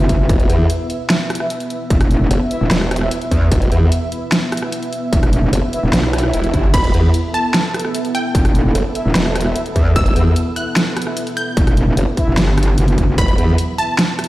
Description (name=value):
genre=heavy wobble dubstep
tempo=149 BPM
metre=4/4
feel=half-time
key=E minor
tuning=A4 = 440 Hz
part: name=lush unison pad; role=sustained chords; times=0.0-14.3 s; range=F#3 to E5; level=-24 LUFS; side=right 1 dB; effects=chorus, phaser, sidechain pumping
part: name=mellow brass ensemble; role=stabs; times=0.0-13.9 s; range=E4 to E5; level=-27 LUFS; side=left 1 dB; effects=digital delay
part: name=metallic wobble bass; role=bass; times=0.0-13.2 s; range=E1 to E2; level=-15 LUFS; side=equal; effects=chorus, overdrive
part: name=dubstep drum kit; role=drums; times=0.1-14.3 s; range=crash cymbal, hi-hat, rim click, snare drum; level=-20 LUFS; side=equal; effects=none
part: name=electronic kick drum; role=drums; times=0.1-13.3 s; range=none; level=-16 LUFS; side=equal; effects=distortion
part: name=formant-sweep wobble bass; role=bass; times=0.3-13.6 s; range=E1 to E2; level=-16 LUFS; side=equal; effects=chorus, overdrive
part: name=swell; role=sound effects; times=6.1-6.7 s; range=none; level=-28 LUFS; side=equal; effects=none
part: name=wide unison pluck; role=melody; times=6.7-14.3 s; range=G5 to G6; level=-23 LUFS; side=equal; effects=digital delay
room=light reverb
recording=played on a big sound system in a bare room, stone room reverb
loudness=-14 LUFS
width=side -16 dB against mid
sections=0.0-14.3 A section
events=swell 6.1-6.7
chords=0.0 E5